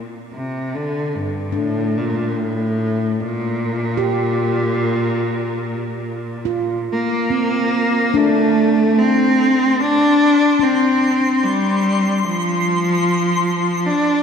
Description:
ambient; 74 BPM; 4/4; straight; F major; A4 = 439 Hz
clear cello; melody; 0.3-14.2 s; G2 to D4; -17 LUFS; equal; ping-pong delay
handpan; arpeggios; 1.5-12.3 s; C4 to G4; -23 LUFS; left 1 dB; ping-pong delay
twinkling granular texture; texture; 9.4-14.2 s; C6; -24 LUFS; left 3 dB; built-in reverb
wet lush hall reverb, RT60 2.7 s; dark, warm production; -16 LUFS; side -6 dB against mid
0.0-8.1 A section; 8.1-14.2 B section
0.0 Gm; 8.1 F5

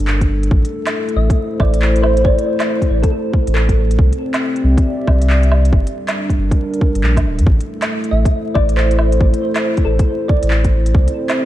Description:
future garage; 138 BPM; 4/4; swing 63% on 16ths; A phrygian; A4 = 441 Hz
dark analog pad; sustained chords; 0.0-11.5 s; G3 to E5; -20 LUFS; left 1 dB; chorus, sidechain pumping
warm sub bass; bass; 0.0-11.1 s; D1 to G2; -14 LUFS; equal; sidechain pumping
organic electronic drum kit; drums; 0.1-11.4 s; handclaps, hi-hat, woodblock; -23 LUFS; right 1 dB; overdrive
electronic kick drum; drums; 0.2-11.1 s; -16 LUFS; equal
thumb-piano-like synth pluck; melody; 1.2-4.0, 8.1-10.9 s; A4 to E5; -23 LUFS; right 2 dB; phaser, lush chorus, diffuse ambient delay
light reverb, digital ambience; vinyl crackle; -13 LUFS; side -13 dB against mid
0.0-11.5 A section
0.0 Gm; 0.5 Am; 4.0 C69; 5.7 Gm; 7.5 Am; 10.9 C69

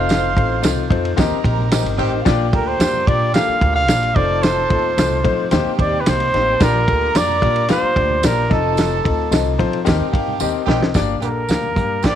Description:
uptempo 1960s-style soul; 110 BPM; 4/4; straight; Bb major; A4 = 441 Hz
warm trumpet; melody; 0.0-12.2 s; A4 to F5; -19 LUFS; right 1 dB
glockenspiel with soft plastic mallets; second line; 0.0-9.3 s; A5 to F6; -31 LUFS; right 15 dB
warm studio violin section; second line; 0.0-10.7 s; C4 to C6; -28 LUFS; right 14 dB
warm concert grand piano; accompaniment; 0.0-12.2 s; A3 to F5; -22 LUFS; left 11 dB
upright bass; bass; 0.0-12.0 s; F1 to F3; -22 LUFS; right 1 dB
warm soul drum kit; drums; 0.1-12.2 s; hi-hat, kick drum, ride cymbal, snare drum; -20 LUFS; right 1 dB
congas; percussion; 0.1-12.2 s; -34 LUFS; right 10 dB
tambourine; percussion; 0.1-12.2 s; -33 LUFS; right 14 dB
warm horn section; second line; 1.7-2.2, 10.4-12.2 s; D3 to G4; -27 LUFS; right 13 dB
light reverb; 1960s-style stereo with parts hard left and right; -15 LUFS; side -10 dB against mid
0.0-11.0 A section; 11.0-12.2 B section
band accent 0.1-2.3, 8.8-11.0; drum fill 10.4-11.0
0.0 F7; 1.2 Eb6; 2.3 Bb6; 4.2 F7; 5.5 Eb6; 6.6 Bb6; 8.5 F7; 9.9 Eb6; 11.0 Gm

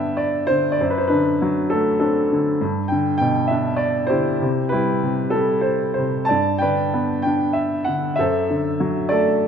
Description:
classical, lyrical solo piano; 97 BPM; 3/4; uneven beats, rubato; G major; A4 = 440 Hz
bright upright piano; solo; 0.0-9.5 s; F#2 to A5; -18 LUFS; equal
moderate concert hall reverb, RT60 1.7 s; minimal, uncompressed stereo recording; -18 LUFS; side -7 dB against mid
0.0-9.5 A section
0.0 G; 0.8 D7/F#; 2.6 G; 4.4 C; 6.3 G; 8.2 D7/F#

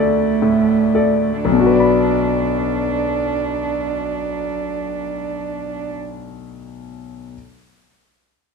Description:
neoclassical piano and strings; 41 BPM (dotted quarters); 6/8; rubato; B minor; A4 = 440 Hz
dark cello; second line; 0.0-5.9 s; A3 to D4; -21 LUFS; right 10 dB
bright grand piano; accompaniment; 0.0-7.4 s; B1 to B5; -19 LUFS; left 5 dB
light reverb; minimal, uncompressed stereo recording; -16 LUFS; side -5 dB against mid
0.0-1.5 A section; 1.5-7.3 B section
slowing down 0.0-1.5
0.0 D; 1.5 Bm

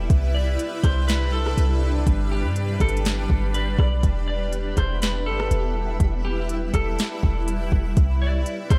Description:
hip hop, atmospheric cloud-rap; 122 BPM; 4/4; half-time; E minor; A4 = 441 Hz
shimmering ambient pad; sustained chords; 0.0-8.8 s; C3 to B4; -32 LUFS; equal; chorus, built-in reverb, phaser, sidechain pumping
clean 808-style bass; bass; 0.0-8.8 s; E1 to G2; -25 LUFS; equal
twinkling granular texture; texture; 0.0-8.8 s; B3 to E5; -43 LUFS; equal
smooth R&B drum kit; drums; 0.1-8.8 s; hi-hat, kick drum, rim click, snare drum; -25 LUFS; equal; overdrive
clean electric guitar; melody; 0.3-8.8 s; G4 to D5; -33 LUFS; equal; spring reverb, low-pass filter, analog delay
digital ambience; -23 LUFS; mono
0.0-8.8 A section
0.1 Cmaj7; 2.1 G; 4.0 Em; 8.0 Cmaj7

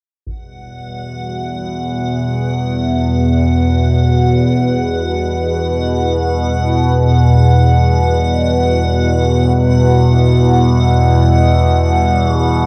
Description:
ambient; free time; E minor; A4 = 440 Hz
dark analog pad; sustained chords; 1.0-12.7 s; G3 to F#5; -25 LUFS; equal; chorus, shimmer reverb
overtone-sweeping drone; drone; 0.9-12.7 s; E2 to B2; -14 LUFS; equal; chorus, built-in reverb, phaser
icy glass pad; texture; 0.6-12.7 s; F#5; -25 LUFS; equal; chorus, built-in reverb, shimmer reverb
wet cathedral reverb, RT60 6.7 s; worn, warbling old tape, cassette tape, warbly pitch drift; -14 LUFS; mono
0.3-12.7 A section
fade-in on analog synth pad 0.3-12.7
0.3 Emadd9

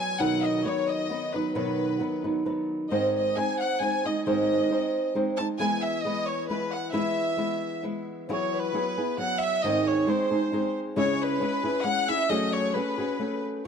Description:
mexican folk; 134 BPM; 3/4; rubato; E major; A4 = 441 Hz
rich chamber violin section; melody; 0.0-13.4 s; B4 to A5; -28 LUFS; equal; tape echo
flamenco guitar; accompaniment; 0.0-13.7 s; G#2 to B#4; -26 LUFS; equal
light reverb, studio ambience; dry, close 1970s-style studio recording; -24 LUFS; side -6 dB against mid
0.0-8.3 A section; 8.3-13.7 B section
0.2 B; 2.9 G#; 5.6 E; 8.3 Eadd9; 9.6 G#; 11.0 C#m; 12.3 F#madd9

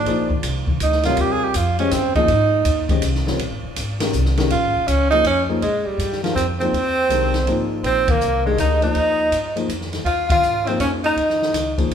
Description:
modal jazz; 162 BPM; 3/4; swing 65% on 8ths; A4 = 440 Hz
bright tenor saxophone; second line; 0.0-11.7 s; F3 to Ab4; -22 LUFS; right 4 dB
warm grand piano; accompaniment; 0.0-11.9 s; C3 to Eb5; -24 LUFS; left 4 dB
upright bass; bass; 0.0-11.9 s; Eb1 to Bb2; -23 LUFS; equal
open jazz drum kit; drums; 0.1-11.9 s; hi-hat, kick drum, ride cymbal, snare drum; -26 LUFS; left 1 dB
clear tenor saxophone; melody; 5.6-11.7 s; F3 to F4; -20 LUFS; equal
wet large studio reverb, RT60 1.3 s; band playing live in one room; -17 LUFS; side -8 dB against mid
0.0-5.6 A section; 5.6-11.9 B section
tenor saxophone solo 0.0-5.6; band accent 8.0, 10.2
0.0 Bb9sus4; 1.2 Eb13sus4; 5.6 Bb13sus4; 10.1 Eb13sus4

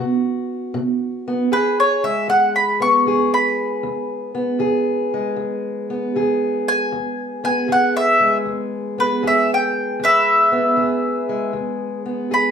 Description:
acoustic country blues, solo or duo; 78 BPM; 4/4; swing 67% on 8ths; E major; A4 = 440 Hz
mandolin; melody; 0.0-12.5 s; B4 to C#6; -16 LUFS; equal
fingerpicked steel-string acoustic guitar; accompaniment; 0.0-12.5 s; E2 to G#4; -20 LUFS; right 1 dB
moderate large studio reverb, RT60 0.8 s; band playing live in one room; -17 LUFS; side -7 dB against mid
0.0-1.5 A section; 1.5-12.5 B section
0.0 B5; 1.5 E

